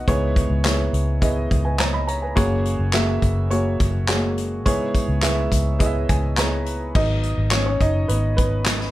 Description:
piano-driven pop; 105 BPM; 4/4; straight; C# dorian; A4 = 440 Hz
warm upright piano; accompaniment; 0.0-8.9 s; G#2 to B5; -23 LUFS; equal
vintage muted fingered electric bass; bass; 0.0-8.9 s; F#1 to C#2; -22 LUFS; equal
unplugged drum kit; drums; 0.1-8.9 s; crash cymbal, handclaps, hi-hat, kick drum, snare drum; -22 LUFS; equal
little or no reverb; -18 LUFS; side -15 dB against mid
0.0-6.9 A section; 6.9-8.9 B section
upright piano fill 5.8-6.9; upright piano solo 6.9-8.9
0.1 C#m7; 2.4 F#add9; 4.7 C#m7; 6.9 G#m7

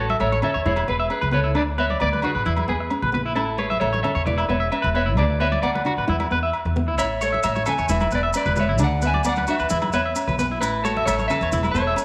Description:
highlife guitar band; 132 BPM; 4/4; straight; A4 = 440 Hz
clean electric guitar; melody; 0.0-12.0 s; E4 to G#5; -28 LUFS; equal; spring reverb
nylon-string guitar; accompaniment; 0.0-12.0 s; G#3 to E4; -32 LUFS; equal
electric guitar at the edge of break-up; arpeggios; 0.0-11.9 s; D4 to E5; -27 LUFS; equal; harmonic tremolo
upright bass; bass; 0.0-11.9 s; E1 to E2; -27 LUFS; equal
congas; percussion; 0.1-11.7 s; -35 LUFS; equal
agogo bells; percussion; 0.2-12.0 s; -33 LUFS; equal
maracas; percussion; 7.0-12.0 s; -38 LUFS; equal
moderate echo chamber reverb, RT60 1.5 s, small room reverb; -22 LUFS; mono
0.0-12.0 A section
0.0 A; 0.7 E; 1.6 D5; 2.5 E; 3.4 A; 4.3 E5; 5.2 D6; 6.1 E5; 7.0 A; 7.9 E; 8.8 D6; 9.7 E5; 10.6 A; 11.5 E5

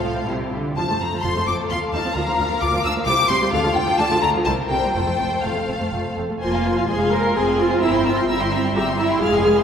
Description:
quick classical-period movement for string orchestra; 121-133 BPM; 3/4; rubato; F major, F minor from 6.4 s; A4 = 440 Hz
rich symphonic violin section; melody; 0.0-9.6 s; F5 to F6; -23 LUFS; left 3 dB
warm symphonic violin section; second line; 0.0-9.6 s; F4 to C6; -26 LUFS; left 2 dB
warm symphonic viola section; accompaniment; 0.0-9.6 s; D3 to Bb4; -22 LUFS; right 1 dB
rich studio cello section; bass; 0.0-9.6 s; C2 to C4; -27 LUFS; right 1 dB
rich symphonic double bass section; bass; 0.0-9.6 s; F1 to Eb2; -28 LUFS; right 2 dB
wet church reverb, RT60 3.3 s; recorded in a church or concert hall; -18 LUFS; side -7 dB against mid
0.0-6.4 A section; 6.4-9.6 B section
0.3 C; 0.8 F; 1.7 F7; 2.2 Bb/D; 3.1 C5; 3.5 Dm; 4.5 C7(no3); 4.9 F; 6.4 Fm; 7.8 C7/G

